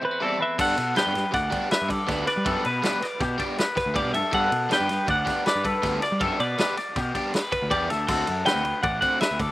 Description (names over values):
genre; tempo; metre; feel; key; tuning
math rock and midwest emo; 160 BPM; 5/4; straight; G major; A4 = 440 Hz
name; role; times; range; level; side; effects
twangy electric guitar; accompaniment; 0.0-0.6 s; E2 to E4; -33 LUFS; right 5 dB; slapback echo
twangy electric guitar; arpeggios; 0.0-9.5 s; G4 to D5; -28 LUFS; left 3 dB; none
overdriven electric guitar; riff; 0.0-9.4 s; D3 to G4; -31 LUFS; right 1 dB; slapback echo
twelve-string electric guitar; melody; 0.1-9.5 s; B4 to G5; -26 LUFS; right 1 dB; none
fuzz picked electric bass; bass; 0.6-9.5 s; A1 to G3; -30 LUFS; equal; overdrive
loose indie drum kit; drums; 0.6-9.5 s; crash cymbal, kick drum, ride cymbal, snare drum; -29 LUFS; equal; none
room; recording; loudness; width
little or no reverb; recorded outdoors, with no room sound; -22 LUFS; side -16 dB against mid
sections
0.6-9.5 A section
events
break 0.0-0.6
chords
0.0 C6/E; 0.6 Gadd9; 8.1 D6